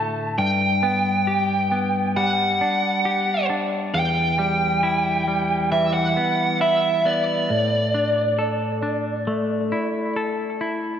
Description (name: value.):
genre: post-rock.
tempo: 67 BPM.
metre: 4/4.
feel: straight.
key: unclear.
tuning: A4 = 440 Hz.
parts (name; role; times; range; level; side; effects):
biting lead guitar; melody; 0.0-10.1 s; D5 to A5; -21 LUFS; right 1 dB; overdrive, analog delay.
semi-hollow electric guitar; arpeggios; 0.0-11.0 s; E2 to A4; -23 LUFS; left 1 dB; spring reverb, analog delay.
room: wet lush hall reverb, RT60 2.5 s.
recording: big arena sound.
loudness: -19 LUFS.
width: side -8 dB against mid.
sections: 0.0-11.0 A section.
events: none.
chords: 0.4 G; 3.9 Em; 7.5 Asus4.